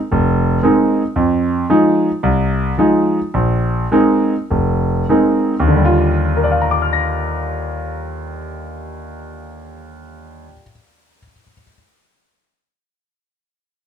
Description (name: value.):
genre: solo jazz.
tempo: 95-112 BPM.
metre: 4/4.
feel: swing 67% on 8ths.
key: Eb major.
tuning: A4 = 440 Hz.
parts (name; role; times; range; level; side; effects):
clear concert grand piano; solo; 0.1-11.7 s; F1 to Bb6; -14 LUFS; equal; none.
room: light reverb.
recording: minimal, uncompressed stereo recording.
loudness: -13 LUFS.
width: side -8 dB against mid.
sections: 0.0-5.7 A section; 5.7-10.7 B section.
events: slowing down 1.2-5.7.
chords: 0.0 Bb9sus4; 1.2 Fm7; 3.3 Bb9sus4; 5.7 Ebmaj9.